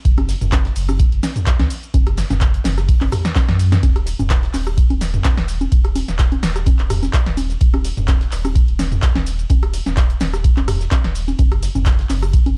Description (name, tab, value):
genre	acid house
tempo	127 BPM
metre	4/4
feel	swing 54% on 16ths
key	unclear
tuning	A4 = 439 Hz
part	warm sub bass	bass	0.1-12.6 s	Eb1 to Gb2	-23 LUFS	equal	tube saturation, sidechain pumping
part	damped 70s drum kit	drums	0.1-12.5 s	hi-hat, snare drum	-40 LUFS	equal	none
part	electronic kick drum	drums	0.1-12.4 s	none	-18 LUFS	equal	none
part	punchy analog drum machine	drums	0.1-12.5 s	congas, handclaps, hi-hat, ride cymbal, rim click, shaker, snare drum, toms	-24 LUFS	equal	none
room	little or no reverb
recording	dark, warm production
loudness	-17 LUFS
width	mono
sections	0.0-3.8 A section; 3.8-12.6 A section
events	drop 0.0-3.8, 3.8-12.6; drum fill 3.4-3.8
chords	none